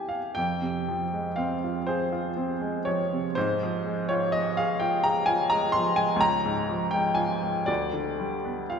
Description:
classical, romantic nocturne for solo piano; 36-43 BPM (dotted quarters); 6/8; rubato; F minor; A4 = 440 Hz
clear upright piano; solo; 0.0-8.8 s; Db2 to C6; -24 LUFS; equal
wet church reverb, RT60 3.0 s; recorded in a church or concert hall; -24 LUFS; side -6 dB against mid
0.4-8.8 A section
0.4 Fm; 3.4 Fm/Ab; 6.2 Db; 7.7 G7/D
| 0.36 1.88 | 3.36 4.80 | 6.20 7.69

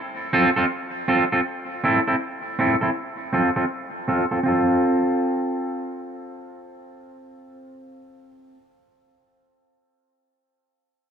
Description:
reggae; 80 BPM; 4/4; swing 62% on 16ths; A4 = 445 Hz
electric guitar at the edge of break-up; accompaniment; 0.3-8.6 s; C4 to A4; -21 LUFS; right 1 dB; low-pass filter, dub echo
moderate spring reverb, RT60 3.1 s; dark, warm production; -20 LUFS; side -7 dB against mid
0.0-4.5 A section; 4.5-7.5 B section
filter sweep on clean electric guitar 0.0-4.5
0.0 F/C; 1.5 C6; 3.0 F/C
0.71 | 1.46 2.21 2.96 3.71 | 4.46 5.21 5.96 6.71

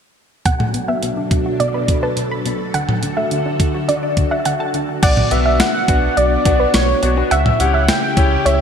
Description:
synth-pop; 105 BPM; 4/4; straight; B minor; A4 = 441 Hz
soft round pluck; second line; 0.5-8.6 s; B4 to F#5; -21 LUFS; right 2 dB; chorus, shimmer reverb, ping-pong delay
string machine, full ensemble; sustained chords; 0.5-8.6 s; D2 to A4; -23 LUFS; equal; ensemble chorus, shimmer reverb
analog pluck; arpeggios; 0.5-4.8 s; B2 to B5; -25 LUFS; left 2 dB; chorus, shimmer reverb, ping-pong delay
clean 12-bit digital drum machine; drums; 0.5-8.6 s; crash cymbal, hi-hat, kick drum, snare drum, toms; -18 LUFS; equal; gated reverb
octave-doubled lead; melody; 5.0-8.6 s; C#5 to G5; -18 LUFS; equal; chorus, shimmer reverb, ping-pong delay
round analog bass; bass; 5.0-8.6 s; B1 to C#2; -18 LUFS; equal
clear concert grand piano; accompaniment; 5.3-8.4 s; B3 to G4; -22 LUFS; left 3 dB; analog chorus, shimmer reverb
wet lush hall reverb, RT60 2.2 s; bright 1980s-style digital production; -14 LUFS; side -7 dB against mid
0.5-5.0 A section; 5.0-8.6 B section
0.5 Bm7; 2.7 D; 5.0 Bm; 7.3 C#dim
| 0.46 1.03 1.60 2.17 | 2.74 3.31 3.88 4.46 | 5.03 5.60 6.17 6.74 | 7.31 7.88 8.46

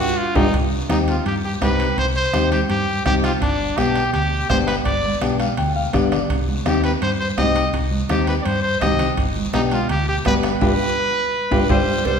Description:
latin, cumbia; 167 BPM; 4/4; straight; C harmonic minor; A4 = 439 Hz
brilliant trumpet; melody; 0.0-12.2 s; D4 to Eb5; -22 LUFS; equal
semi-hollow electric guitar; accompaniment; 0.4-11.8 s; B3 to G5; -22 LUFS; left 4 dB
hollow-body short-scale fingered electric bass; bass; 0.4-12.2 s; G1 to G2; -24 LUFS; equal
bombo; percussion; 0.4-12.2 s; -25 LUFS; right 1 dB
congas; percussion; 0.4-12.2 s; -28 LUFS; right 5 dB
guiro; percussion; 0.4-12.2 s; -35 LUFS; left 3 dB
timbales and cowbell; percussion; 0.4-12.2 s; -31 LUFS; right 4 dB
clear tenor saxophone; second line; 11.7-12.2 s; G3; -25 LUFS; left 1 dB
wet recital hall reverb, RT60 1.8 s; recorded in a church or concert hall; -17 LUFS; side -6 dB against mid
0.5-12.1 A section
drum fill 0.0-0.5, 11.0-12.1; band accent 0.0-0.5, 10.6-12.1; clean electric guitar fill 5.2-6.3
0.0 G7(no3); 0.5 Cm; 3.4 G; 6.3 Cm; 9.2 G
0.18 | 0.54 0.90 1.26 1.62 | 1.98 2.34 2.70 3.06 | 3.42 3.78 4.14 4.50 | 4.86 5.22 5.58 5.94 | 6.30 6.66 7.02 7.38 | 7.74 8.10 8.46 8.82 | 9.18 9.54 9.90 10.26 | 10.62 10.98 11.34 11.70 | 12.06

